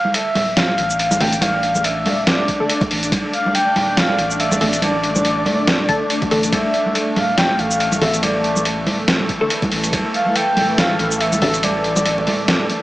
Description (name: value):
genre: deep dubstep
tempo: 141 BPM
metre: 4/4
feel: swing 56% on 16ths, half-time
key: D minor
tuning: A4 = 440 Hz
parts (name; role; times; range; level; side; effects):
- breathy flute-like synth lead; melody; 0.0-12.8 s; D5 to G5; -20 LUFS; equal; wide subtle chorus, dub echo
- granular cloud pad; sustained chords; 0.8-12.8 s; E3 to D5; -23 LUFS; equal; built-in reverb
- congas; percussion; 0.0-12.7 s; none; -24 LUFS; right 1 dB; none
- trip hop sampler-style drum kit; drums; 0.1-12.8 s; hi-hat, ride cymbal, shaker, snare drum; -20 LUFS; equal; none
- soft dub sub bass; bass; 0.4-12.7 s; D1 to A1; -28 LUFS; equal; none
- filtered dub chord stab; stabs; 1.2-11.6 s; D3 to A4; -24 LUFS; left 1 dB; phaser, lush chorus, dub echo
- electronic kick drum; drums; 2.5-3.2, 5.9-6.6, 9.3-10.0 s; none; -24 LUFS; equal; none
room: moderate lush hall reverb, RT60 1.9 s, digital ambience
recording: small speaker sound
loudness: -15 LUFS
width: side -17 dB against mid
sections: 0.0-12.8 A section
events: kick drops out 11.6-12.8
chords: 0.0 D5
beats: 0.14 0.57 0.99 | 1.42 1.84 2.27 2.69 | 3.12 3.55 3.97 4.40 | 4.82 5.25 5.67 6.10 | 6.53 6.95 7.38 7.80 | 8.23 8.65 9.08 9.50 | 9.93 10.35 10.78 11.21 | 11.63 12.06 12.48